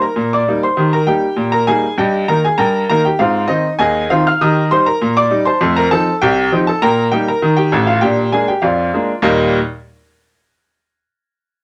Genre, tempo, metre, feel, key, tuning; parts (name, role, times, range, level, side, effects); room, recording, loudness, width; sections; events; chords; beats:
ragtime piano; 99 BPM; 2/4; straight; Eb major; A4 = 438 Hz
bright upright piano; solo; 0.0-9.6 s; A1 to F6; -15 LUFS; equal
light reverb; -15 LUFS; mono
0.0-9.2 A section; 9.2-10.5 B section
0.0 Eb; 2.0 Eb/G; 3.2 Ab; 4.4 Eb; 5.6 F7; 6.8 Eb/Bb; 8.0 Bb7; 9.2 Eb
0.16 | 0.77 1.37 | 1.98 2.58 | 3.19 3.79 | 4.39 5.00 | 5.60 6.21 | 6.81 7.42 | 8.02 8.63 | 9.24